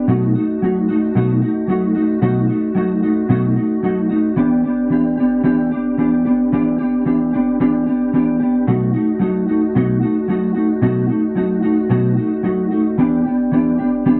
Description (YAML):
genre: indie pop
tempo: 112 BPM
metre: 4/4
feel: swing 55% on 16ths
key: unclear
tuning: A4 = 443 Hz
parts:
  - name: mellow electric guitar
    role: solo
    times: 0.0-14.2 s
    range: B2 to G4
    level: -17 LUFS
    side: equal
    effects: ensemble chorus, warbly pitch drift
room: wet small room reverb, RT60 0.5 s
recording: dark, warm production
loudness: -17 LUFS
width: mono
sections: 0.0-4.4 A section; 4.4-14.2 B section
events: none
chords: 0.1 B7; 4.4 Em7; 8.7 B7; 13.0 Em7